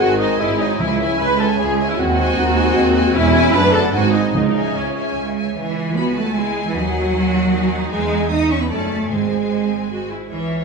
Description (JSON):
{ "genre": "classical", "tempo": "152 BPM", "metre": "3/4", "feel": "straight", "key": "C# minor", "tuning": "A4 = 439 Hz", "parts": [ { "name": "rich symphonic violin section", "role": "melody", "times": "0.0-10.6 s", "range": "B#4 to A5", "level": "-28 LUFS", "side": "left 3 dB", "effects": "none" }, { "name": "mellow clarinet", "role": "second line", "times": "0.0-5.4 s", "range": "G#3 to D#4", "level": "-26 LUFS", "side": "left 3 dB", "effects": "none" }, { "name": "mellow oboe", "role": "second line", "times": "0.0-5.2 s", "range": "C#5 to B5", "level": "-26 LUFS", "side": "right 2 dB", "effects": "none" }, { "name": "mellow silver concert flute", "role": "second line", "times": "0.0-5.2 s", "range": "C#5 to B5", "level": "-26 LUFS", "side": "left 3 dB", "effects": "none" }, { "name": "warm symphonic violin section", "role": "second line", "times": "0.0-10.6 s", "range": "B#4 to D#6", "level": "-28 LUFS", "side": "left 4 dB", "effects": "none" }, { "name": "rich symphonic viola section", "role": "accompaniment", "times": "0.0-10.6 s", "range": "B#3 to B4", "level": "-22 LUFS", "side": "right 1 dB", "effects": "none" }, { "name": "warm bassoon", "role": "accompaniment", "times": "0.0-0.8 s", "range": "D#3 to G#3", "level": "-24 LUFS", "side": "left 1 dB", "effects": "none" }, { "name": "mellow French horn section", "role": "sustained chords", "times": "0.0-10.6 s", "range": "E3 to D#4", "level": "-25 LUFS", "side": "left 2 dB", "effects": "none" }, { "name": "rich symphonic cello section", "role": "bass", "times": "0.0-10.6 s", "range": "C#2 to D#4", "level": "-22 LUFS", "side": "right 4 dB", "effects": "none" }, { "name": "rich symphonic double bass section", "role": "bass", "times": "0.0-10.6 s", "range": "E1 to E2", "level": "-23 LUFS", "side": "right 4 dB", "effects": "none" }, { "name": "timpani", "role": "percussion", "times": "0.8-1.4, 4.3-4.9, 9.1-9.7 s", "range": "G#2 to C#3", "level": "-25 LUFS", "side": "right 4 dB", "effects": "none" } ], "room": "moderate scoring stage reverb, RT60 1.7 s", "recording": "studio reverb", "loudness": "-15 LUFS", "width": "side -4 dB against mid", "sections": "0.0-5.6 A section; 5.6-10.6 B section", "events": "none", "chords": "0.0 G#; 0.8 C#m; 2.0 G#7/D#; 3.1 C#m/E; 3.5 D/F#; 3.9 G#7; 4.3 C#m; 6.8 G#5/D#; 7.9 C#m/E; 8.7 D/F#; 9.1 G#", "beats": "0.00 0.40 | 0.80 1.20 1.59 | 1.98 2.37 2.76 | 3.15 3.54 3.93 | 4.34 4.76 5.17 | 5.58 5.97 6.36 | 6.75 7.14 7.53 | 7.92 8.30 8.70 | 9.10 9.50 9.90 | 10.30" }